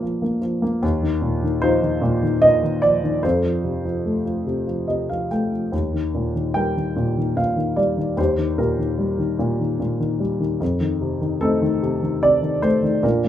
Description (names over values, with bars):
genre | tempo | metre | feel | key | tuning
classical, lyrical solo piano | 74 BPM | 3/4 | rubato | unclear | A4 = 440 Hz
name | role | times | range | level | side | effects
dark grand piano | solo | 0.0-13.3 s | Eb2 to G5 | -18 LUFS | equal | none
room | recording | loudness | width
light reverb | minimal, uncompressed stereo recording | -18 LUFS | side -11 dB against mid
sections
0.0-13.3 A section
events
grand piano fill 4.5-5.7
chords
0.0 Bb; 0.8 Ebsus2; 3.2 F; 5.7 Eb; 10.6 F7